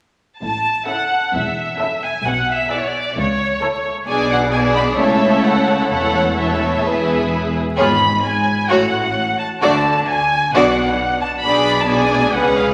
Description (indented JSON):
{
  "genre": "quick classical-period movement for string orchestra",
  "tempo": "131 BPM",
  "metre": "4/4",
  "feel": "straight",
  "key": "A major",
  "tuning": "A4 = 439 Hz",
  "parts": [
    { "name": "rich chamber violin section", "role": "melody", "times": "0.4-12.6 s", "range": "C#5 to B5", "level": "-21 LUFS", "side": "equal", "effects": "none" },
    { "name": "dark chamber double bass section", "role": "bass", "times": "0.4-12.7 s", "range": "E1 to D2", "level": "-28 LUFS", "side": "equal", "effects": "none" },
    { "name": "warm chamber cello section", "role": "bass", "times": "0.4-12.7 s", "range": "E2 to D3", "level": "-26 LUFS", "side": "equal", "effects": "none" },
    { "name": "rich studio violin section", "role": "second line", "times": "0.9-12.7 s", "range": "F#4 to E5", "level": "-21 LUFS", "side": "equal", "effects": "none" },
    { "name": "rich chamber viola section", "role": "accompaniment", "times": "0.9-12.7 s", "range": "G#3 to F#4", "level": "-25 LUFS", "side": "equal", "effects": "none" }
  ],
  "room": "wet concert hall reverb, RT60 2.1 s",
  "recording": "vinyl crackle",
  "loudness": "-17 LUFS",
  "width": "mono",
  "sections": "0.4-12.7 A section",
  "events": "none",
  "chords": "0.4 A; 2.3 E/B; 3.2 A/C#; 4.1 G#dim/B; 5.0 A/C#; 5.9 A/E; 6.8 E; 7.8 C#7/G#; 8.7 F#m/A; 9.6 D; 10.5 Bm; 11.4 G#dim/B",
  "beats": "| 0.42 0.88 1.34 1.80 | 2.26 2.72 3.17 3.63 | 4.08 4.53 4.99 5.45 | 5.91 6.38 6.85 7.32 | 7.79 8.25 8.71 9.17 | 9.63 10.09 10.54 10.99 | 11.44 11.89 12.35"
}